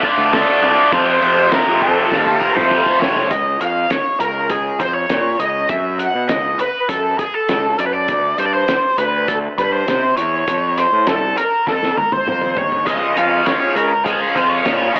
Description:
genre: psychedelic rock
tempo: 100 BPM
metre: 4/4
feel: straight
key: unclear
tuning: A4 = 438 Hz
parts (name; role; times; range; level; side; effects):
- octave-fuzz lead guitar; melody; 0.0-15.0 s; Ab4 to Gb5; -16 LUFS; equal; wah, distortion, tape echo
- overdriven electric guitar; riff; 0.0-3.3, 12.9-15.0 s; F2 to F4; -16 LUFS; equal; phaser
- cloth-damped thuddy drum kit; drums; 0.0-15.0 s; crash cymbal, hi-hat, kick drum, snare drum, toms; -22 LUFS; equal; none
- fuzz picked electric bass; bass; 0.2-15.0 s; A1 to C3; -22 LUFS; equal; overdrive
room: light reverb, small room ambience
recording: telephone sound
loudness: -14 LUFS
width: side -37 dB against mid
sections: 0.0-3.3 A section; 3.3-15.0 B section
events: drum fill 2.1-3.3, 11.7-12.9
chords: 0.0 Dm; 0.9 F; 3.3 Db; 5.7 Gb5; 8.1 D9sus4; 10.5 F; 12.9 Db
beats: 0.33 | 0.93 1.52 2.12 2.71 | 3.31 3.91 4.50 5.10 | 5.70 6.30 6.89 7.49 | 8.09 8.69 9.29 9.88 | 10.48 11.08 11.67 12.27 | 12.87 13.47 14.06 14.66

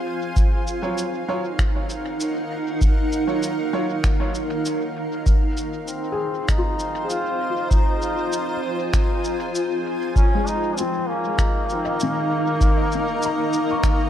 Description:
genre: ambient dub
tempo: 98 BPM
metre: 4/4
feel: straight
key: Eb dorian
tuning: A4 = 439 Hz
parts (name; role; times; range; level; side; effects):
- granular cloud pad; sustained chords; 0.0-14.1 s; Eb4 to Ab5; -25 LUFS; right 1 dB; built-in reverb
- electronic cabasa and finger snaps; drums; 0.4-14.0 s; none; -31 LUFS; equal; dub echo
- electronic kick drum; drums; 0.4-14.0 s; none; -19 LUFS; equal; none
- bright upright piano; stabs; 0.8-3.9 s; Gb3 to Db5; -30 LUFS; right 2 dB; dub echo
- trombone with straight mute; melody; 5.9-14.1 s; Bb3 to F4; -26 LUFS; equal; tape echo
- felt-muted upright piano; arpeggios; 6.1-14.1 s; Eb3 to Db6; -29 LUFS; left 4 dB; tape echo
room: light reverb, small room ambience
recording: none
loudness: -20 LUFS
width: side -10 dB against mid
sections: 0.0-14.1 A section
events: none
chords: 0.4 Ebm9; 5.3 Fm7; 10.2 Ebsus2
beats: | 0.36 0.98 1.59 2.20 | 2.81 3.43 4.04 4.65 | 5.26 5.88 6.49 7.10 | 7.71 8.32 8.94 9.55 | 10.16 10.77 11.39 12.00 | 12.61 13.22 13.84

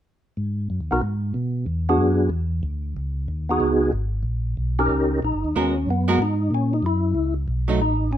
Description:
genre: soul jazz organ trio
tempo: 186 BPM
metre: 4/4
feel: swing 64% on 8ths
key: G# minor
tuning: A4 = 437 Hz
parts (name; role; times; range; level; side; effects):
- mellow tonewheel organ; bass; 0.4-8.2 s; G1 to B2; -23 LUFS; equal; overdrive, chorus vibrato, slow rotary speaker
- percussive tonewheel organ; melody; 0.9-8.2 s; B3 to A#4; -21 LUFS; equal; slow rotary speaker, chorus vibrato
- archtop guitar, miked and amplified; accompaniment; 5.6-7.8 s; F#3 to A#4; -22 LUFS; right 2 dB; none
room: light reverb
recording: minimal, uncompressed stereo recording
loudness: -20 LUFS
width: side -11 dB against mid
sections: 0.4-5.5 A section; 5.5-8.2 B section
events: none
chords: 0.4 G#m7; 1.7 E9; 3.0 C#7sus4; 4.2 D#7; 5.5 G#m9; 6.8 F#5; 7.5 B7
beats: | 0.37 0.69 1.01 1.34 | 1.66 1.99 2.31 2.63 | 2.96 3.28 3.60 3.93 | 4.25 4.57 4.90 5.22 | 5.54 5.87 6.19 6.51 | 6.83 7.16 7.48 7.80 | 8.13

